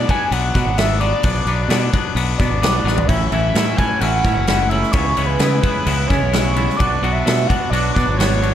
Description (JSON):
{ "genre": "indie rock", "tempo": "130 BPM", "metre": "4/4", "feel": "straight", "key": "unclear", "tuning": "A4 = 440 Hz", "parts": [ { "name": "overdriven synth lead", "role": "melody", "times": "0.0-8.5 s", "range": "B4 to G#5", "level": "-22 LUFS", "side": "right 1 dB", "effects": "distortion, chorus, phaser, slapback echo" }, { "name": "twangy electric guitar", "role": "riff", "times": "0.0-8.5 s", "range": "A2 to F#4", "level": "-22 LUFS", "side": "left 8 dB", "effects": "none" }, { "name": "growling fingered electric bass", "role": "bass", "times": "0.0-8.5 s", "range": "F#1 to C#3", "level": "-20 LUFS", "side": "equal", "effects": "overdrive" }, { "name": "big rock drum kit", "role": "drums", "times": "0.1-8.5 s", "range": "crash cymbal, kick drum, snare drum, splash cymbal, toms", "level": "-20 LUFS", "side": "equal", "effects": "none" }, { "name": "crunchy overdriven guitar", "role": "riff", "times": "3.1-8.5 s", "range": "A2 to F#4", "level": "-25 LUFS", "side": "right 8 dB", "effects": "wide subtle chorus" } ], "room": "light reverb", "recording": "dark, warm production", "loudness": "-15 LUFS", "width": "side -10 dB against mid", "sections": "0.0-8.5 A section", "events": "drum fill 2.9", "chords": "0.0 Bm; 3.1 A6; 4.9 C#m7; 6.8 Bm" }